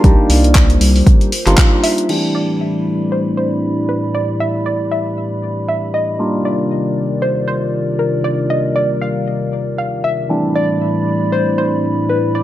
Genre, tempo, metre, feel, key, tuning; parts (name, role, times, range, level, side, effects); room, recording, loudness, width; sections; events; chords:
deep house; 117 BPM; 4/4; swing 57% on 16ths; A minor; A4 = 440 Hz
dark analog pad; sustained chords; 0.0-12.4 s; A2 to B5; -21 LUFS; equal; chorus, sidechain pumping
barky tine electric piano; stabs; 0.0-12.4 s; E3 to G4; -18 LUFS; equal; phaser, sidechain pumping, low-pass filter, ping-pong delay
round analog bass; bass; 0.0-1.6 s; G1 to C2; -13 LUFS; equal; sidechain pumping
deep house drum kit; drums; 0.0-2.2 s; crash cymbal, handclaps, hi-hat; -19 LUFS; left 1 dB
electronic kick drum; drums; 0.0-1.7 s; -10 LUFS; equal
soft round pluck; melody; 1.6-12.4 s; Bb4 to F5; -21 LUFS; equal; chorus, ping-pong delay
light reverb; -14 LUFS; side -13 dB against mid
0.0-2.1 A section; 2.1-12.4 B section
band accent 1.6; filter sweep on tine electric piano 2.1-12.4
0.0 Cm11; 2.1 Am11; 6.2 Cm11; 10.3 Am11